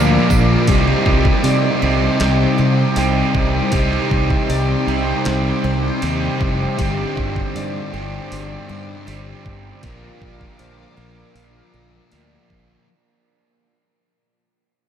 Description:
rock, shoegaze and dream pop; 79 BPM; 4/4; straight; C minor; A4 = 445 Hz
warm analog pad; sustained chords; 0.0-12.9 s; Eb4 to D6; -26 LUFS; right 1 dB; chorus
picked twelve-string acoustic guitar; arpeggios; 0.0-12.9 s; F4 to D5; -28 LUFS; left 4 dB; wide subtle chorus, analog delay
crunchy overdriven guitar; riff; 0.0-12.9 s; G2 to Bb4; -22 LUFS; right 8 dB; reverse reverb
sludgy distorted guitar; riff; 0.0-0.7 s; Bb2 to Bb3; -23 LUFS; right 2 dB
thick fuzz guitar; riff; 0.0-12.9 s; G2 to C4; -22 LUFS; left 7 dB; distortion, analog chorus
growling fingered electric bass; bass; 0.0-12.7 s; F1 to C3; -21 LUFS; right 1 dB; overdrive
detuned 8-bit digital drum machine; drums; 0.3-12.7 s; hi-hat, kick drum, snare drum; -21 LUFS; equal
tambourine; percussion; 0.3-0.5 s; -37 LUFS; right 10 dB
moderate huge ambient reverb, RT60 7.4 s; dreamy mix soaked in reverb; -15 LUFS; side -9 dB against mid
0.0-12.9 A section
fade-out 0.0-12.9
0.0 Bb; 0.7 Cmadd9; 6.8 Gsus4; 9.8 Bb

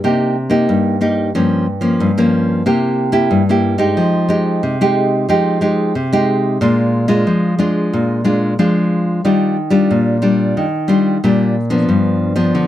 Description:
samba; 91 BPM; 4/4; straight; C minor; A4 = 440 Hz
nylon-string guitar; solo; 0.0-12.7 s; G2 to G4; -13 LUFS; equal
light reverb; close, detailed microphones; -13 LUFS; side -12 dB against mid
0.0-12.7 A section
0.0 Cm7; 1.4 Gm7b5; 2.7 C7; 4.0 Fm9; 6.6 Bb7; 9.2 Ebmaj9; 11.9 G7

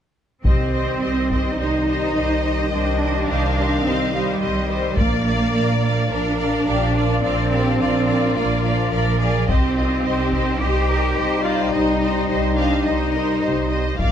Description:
cinematic, epic orchestral film score; 106 BPM; 4/4; straight; C minor; A4 = 438 Hz
rich symphonic cello section; bass; 0.4-14.1 s; F3 to G4; -23 LUFS; right 2 dB
taiko ensemble; drums; 0.4-1.6, 5.0-6.1, 9.5-14.1 s; -22 LUFS; equal
rich studio violin section; second line; 0.5-14.1 s; D5 to F5; -28 LUFS; left 3 dB
rich symphonic viola section; accompaniment; 0.5-14.1 s; G4 to D5; -26 LUFS; right 1 dB
dark French horn section; sustained chords; 0.5-14.1 s; Eb3 to F4; -26 LUFS; left 4 dB
rich symphonic double bass section; bass; 0.5-14.1 s; Bb1 to C2; -23 LUFS; right 2 dB
rich studio violin section; melody; 1.6-14.1 s; F4 to F5; -28 LUFS; left 5 dB
light reverb; -17 LUFS; side -9 dB against mid
0.4-14.1 A section
0.4 Cm; 5.0 Bb; 9.5 Cm

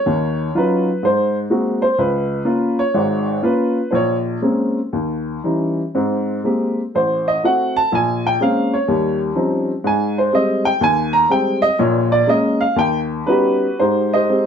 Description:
solo jazz; 123 BPM; 4/4; swing 67% on 8ths, rubato; Ab major; A4 = 440 Hz
warm upright piano; solo; 0.0-14.5 s; Ab1 to Bb5; -15 LUFS; equal
wet studio reverb, RT60 0.6 s; band playing live in one room; -15 LUFS; side -7 dB against mid
0.0-13.8 A section
upright piano solo 0.0-13.8
0.1 Ebm9; 1.0 Ab9; 2.0 Db6; 3.9 Bbm9; 4.9 Eb7b9; 5.9 Abmaj9; 6.9 Adim7; 7.9 Bbm9; 8.9 Eb13; 9.8 Abmaj7; 11.8 Bbm7; 12.8 Eb7alt; 13.8 Abmaj7

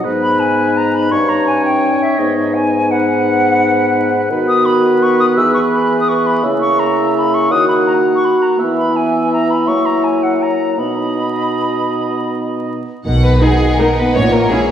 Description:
classical, orchestral ballroom waltz; 150-182 BPM; 3/4; rubato; B major; A4 = 439 Hz
warm oboe; second line; 0.0-12.8 s; B4 to F#5; -22 LUFS; right 1 dB
mellow bassoon; accompaniment; 0.0-14.7 s; G2 to F#3; -19 LUFS; equal
dark French horn section; sustained chords; 0.0-14.7 s; G#3 to G#4; -17 LUFS; equal
silver concert flute; second line; 0.2-14.7 s; D#5 to E6; -18 LUFS; left 1 dB
rich symphonic violin section; melody; 13.1-14.7 s; C#5 to F#5; -25 LUFS; left 3 dB
rich symphonic cello section; bass; 13.1-14.5 s; A#2 to B2; -18 LUFS; right 1 dB
rich symphonic double bass section; bass; 13.1-14.5 s; A#1 to B1; -16 LUFS; equal
warm symphonic violin section; second line; 13.2-14.7 s; G#4 to C#5; -16 LUFS; left 1 dB
rich symphonic viola section; accompaniment; 13.4-14.6 s; B3 to E4; -20 LUFS; right 1 dB
wet scoring stage reverb, RT60 1.9 s; heard from further back in the room, vinyl crackle; -12 LUFS; side -9 dB against mid
0.0-13.1 A section; 13.1-14.7 A section
0.0 G#m; 1.1 D#7/G; 2.2 G#m; 4.3 B/D#; 5.4 E; 6.4 A#dim/C#; 7.5 D#m; 8.6 E; 9.7 F#7; 10.8 B; 14.2 F#7/A#

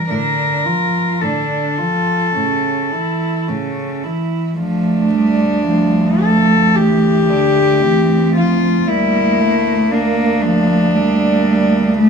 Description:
classical, lyrical piece for cello ensemble; 53-59 BPM; 4/4; rubato; D minor; A4 = 440 Hz
warm cello; melody; 0.0-12.1 s; D4 to Bb4; -17 LUFS; left 3 dB
dark cello; second line; 0.0-12.1 s; G3 to F4; -21 LUFS; right 7 dB
rich cello; accompaniment; 0.0-12.1 s; C#3 to Bb3; -18 LUFS; left 1 dB
dark cello; bass; 0.1-12.1 s; D2 to A2; -19 LUFS; right 2 dB
light reverb; -13 LUFS; side -6 dB against mid
0.0-12.1 A section
0.1 Dm/A; 2.4 A; 4.6 Dm; 8.9 Gm/D

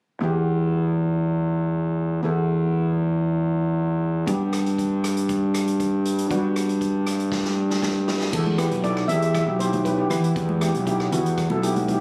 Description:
calypso; 118 BPM; 4/4; straight; A4 = 441 Hz
steel pan; accompaniment; 0.2-12.0 s; B3 to A4; -30 LUFS; equal
fuzz fingered electric bass; bass; 0.2-12.0 s; B1 to E3; -24 LUFS; equal; overdrive
swinging big-band drum kit; drums; 4.3-12.0 s; crash cymbal, hi-hat, kick drum, rim click, snare drum; -34 LUFS; equal
steel pan; melody; 8.3-11.6 s; A4 to E5; -30 LUFS; equal
congas; percussion; 8.5-11.9 s; -33 LUFS; equal
little or no reverb; recorded on a phone in the room, studio reverb, compression; -23 LUFS; mono
0.2-8.3 A section; 8.3-12.0 B section
drum fill 7.3-8.3
0.2 Em; 4.3 G; 8.3 Em

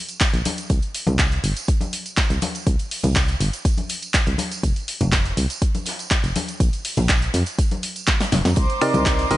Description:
piano house; 122 BPM; 4/4; straight; C minor; A4 = 445 Hz
punchy analog drum machine; drums; 0.1-9.4 s; finger snaps, handclaps, hi-hat, snare drum; -24 LUFS; equal
tambourine and congas; percussion; 0.1-9.3 s; -30 LUFS; left 3 dB
electronic kick drum; drums; 0.2-9.2 s; -20 LUFS; equal
soft-mallet drum kit; drums; 0.2-9.4 s; hi-hat, snare drum; -35 LUFS; right 3 dB; sidechain pumping on hats, high-pass filter on hats, high-pass filter on snare, high-pass filter on room
solid FM bass; bass; 0.3-9.4 s; F1 to F2; -21 LUFS; equal; sidechain pumping
rich chamber string section; sustained chords; 8.6-9.4 s; C5 to D6; -24 LUFS; right 2 dB; sidechain pumping
percussive organ stab; riff; 8.8-9.4 s; C3 to Eb5; -20 LUFS; right 1 dB; chorus, sidechain pumping
small room ambience; nothing above 10.5 kHz; -19 LUFS; side -15 dB against mid
0.0-9.4 A section
drum fill 8.1-8.6
0.0 Bb5; 0.7 C5; 4.4 F5; 6.6 Bb5; 8.6 Cm9

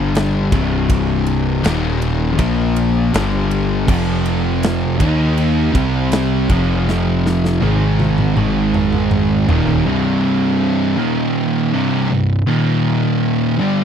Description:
stoner and doom metal; 80 BPM; 4/4; straight; C minor; A4 = 440 Hz
overdriven electric guitar; riff; 0.0-13.8 s; C2 to Eb4; -21 LUFS; equal
thick fuzz guitar; riff; 0.0-13.8 s; C2 to Eb4; -20 LUFS; left 8 dB; distortion
fuzz picked electric bass; bass; 0.0-9.8 s; C1 to Eb2; -20 LUFS; equal; overdrive
big rock drum kit; drums; 0.2-9.8 s; crash cymbal, kick drum, ride cymbal, snare drum, toms; -21 LUFS; equal
thick fuzz guitar; riff; 3.9-13.8 s; C2 to Eb4; -19 LUFS; right 8 dB; distortion
little or no reverb; dry, close 1970s-style studio recording; -14 LUFS; side -8 dB against mid
0.0-9.9 A section; 9.9-13.8 B section
drum fill 6.9-9.9
0.0 G5; 0.5 C5; 1.6 Eb5; 2.4 Bb5; 3.1 G5; 3.9 F5; 5.0 Eb5; 5.8 C5; 6.5 F5; 7.6 Ab5; 9.5 Eb5; 9.9 C5; 11.0 Eb5; 11.7 C5; 12.5 Eb5

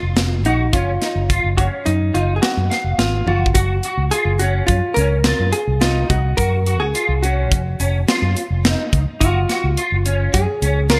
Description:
progressive instrumental, band music in an uneven meter; 106 BPM; 5/4; straight; Gb lydian; A4 = 444 Hz
vintage hollow-body jazz guitar; melody; 0.0-11.0 s; Eb4 to Bb4; -24 LUFS; equal
electric guitar at the edge of break-up; arpeggios; 0.0-11.0 s; Db4 to F5; -27 LUFS; equal; ensemble chorus, digital delay
fingered electric bass with an envelope filter; bass; 0.0-11.0 s; F1 to Gb2; -21 LUFS; equal
tight metal drum kit; drums; 0.2-11.0 s; hi-hat, kick drum, snare drum, toms; -22 LUFS; equal; gated reverb
tube shaker; percussion; 3.6-10.9 s; -34 LUFS; equal
light reverb, small room ambience; bright 1980s-style digital production; -18 LUFS; mono
0.0-3.6 A section; 3.6-11.0 B section
drum fill 3.3
0.0 Gbmaj7(no3)

